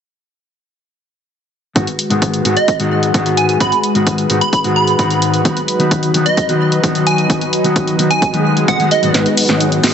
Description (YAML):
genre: EDM, festival progressive house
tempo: 130 BPM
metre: 4/4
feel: straight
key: G# minor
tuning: A4 = 440 Hz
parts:
  - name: mellow electric guitar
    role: accompaniment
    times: 1.8-9.9 s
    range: G#2 to F#4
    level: -16 LUFS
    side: left 2 dB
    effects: sidechain pumping, digital delay
  - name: lush unison pad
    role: sustained chords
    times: 1.8-9.9 s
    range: F#3 to B4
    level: -20 LUFS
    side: equal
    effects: chorus, sidechain pumping
  - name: electronic kick drum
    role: drums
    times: 1.8-8.8 s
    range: none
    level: -19 LUFS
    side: right 1 dB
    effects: high-pass filter on kick
  - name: house drum kit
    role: drums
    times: 1.8-9.9 s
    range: hi-hat, shaker, snare drum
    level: -19 LUFS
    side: equal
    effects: high-pass filter on hats, high-pass filter on snare, high-pass filter on perc
  - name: plucky unison lead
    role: melody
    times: 2.6-9.1 s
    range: D#5 to B5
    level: -18 LUFS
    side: right 2 dB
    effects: phaser, digital delay
  - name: swell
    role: sound effects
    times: 8.3-9.1 s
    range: none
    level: -22 LUFS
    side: right 5 dB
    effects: none
  - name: supersaw chords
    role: riff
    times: 9.1-9.9 s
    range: G#3 to D#5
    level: -16 LUFS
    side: equal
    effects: sidechain pumping, low-pass filter, digital delay
  - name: saturated sub bass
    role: bass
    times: 9.1-9.9 s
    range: none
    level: barely audible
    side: none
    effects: none
room: moderate lush hall reverb, RT60 2.6 s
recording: heavily compressed radio sound, multiband compression, nothing above 8.0 kHz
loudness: -12 LUFS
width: side -8 dB against mid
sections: 1.8-9.1 A section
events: swell 8.3-9.1; drum fill 9.1-9.9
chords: 1.8 G#m7